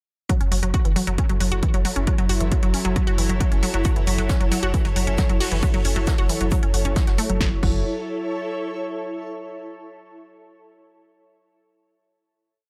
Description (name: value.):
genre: driving peak-time techno.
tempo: 135 BPM.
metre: 4/4.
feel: straight.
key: F# minor.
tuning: A4 = 440 Hz.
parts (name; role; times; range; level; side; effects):
resonant blip pluck; riff; 0.3-7.8 s; E3 to F#4; -29 LUFS; equal; chorus, sidechain pumping, tape echo.
metallic inharmonic drone; drone; 1.2-7.5 s; F#3; -36 LUFS; equal; none.
electronic kick drum; drums; 0.3-7.7 s; none; -24 LUFS; equal; none.
punchy analog drum machine; drums; 0.3-7.7 s; crash cymbal, hi-hat, snare drum; -32 LUFS; equal; sidechain pumping on hats, sidechain pumping on cymbals.
granular cloud pad; texture; 1.3-9.1 s; E4 to C#5; -32 LUFS; equal; built-in reverb, sidechain pumping.
warm sub bass; bass; 0.4-7.8 s; F#1; -26 LUFS; equal; sidechain pumping, low-pass filter.
vintage drum kit; drums; 3.8-7.3 s; hi-hat, shaker, snare drum; -38 LUFS; equal; high-pass filter on hats, high-pass filter on snare, high-pass filter on perc, high-pass filter on room.
room: light reverb.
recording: none.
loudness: -22 LUFS.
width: mono.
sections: 0.3-7.4 groove; 7.4-9.2 final chord.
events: none.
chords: 0.3 F#m.